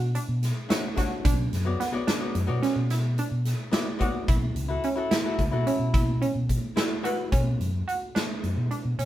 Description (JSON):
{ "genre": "progressive instrumental, band music in an uneven meter", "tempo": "217 BPM (eighths)", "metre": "11/8", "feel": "straight", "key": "B minor", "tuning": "A4 = 437 Hz", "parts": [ { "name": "archtop guitar, miked and amplified", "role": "accompaniment", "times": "0.0-7.3 s", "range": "B3 to A5", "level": "-31 LUFS", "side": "left 4 dB", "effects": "none" }, { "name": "analog pluck", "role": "arpeggios", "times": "0.0-9.1 s", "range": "B3 to F#4", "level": "-31 LUFS", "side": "right 4 dB", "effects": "chorus" }, { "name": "fingered electric bass", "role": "bass", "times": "0.0-9.1 s", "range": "B1 to B2", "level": "-27 LUFS", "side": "equal", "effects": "none" }, { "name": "big rock drum kit", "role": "drums", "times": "0.1-9.1 s", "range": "hi-hat, kick drum, snare drum", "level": "-28 LUFS", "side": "equal", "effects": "none" } ], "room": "moderate studio ambience, RT60 0.5 s", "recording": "band playing live in one room", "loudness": "-24 LUFS", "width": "side -13 dB against mid", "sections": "0.0-7.3 A section; 7.3-9.1 B section", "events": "hollow-body jazz guitar fill 6.5-7.3", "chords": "0.0 Dmaj7; 4.3 F#m7/B; 7.3 Bmadd9", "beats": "0.15 0.42 0.70 0.97 | 1.25 1.53 1.80 2.08 2.35 2.63 2.90 3.18 3.46 3.73 4.01 | 4.29 4.56 4.84 5.11 5.39 5.67 5.94 6.22 6.50 6.77 7.05 | 7.33 7.60 7.88 8.16 8.43 8.71 8.99" }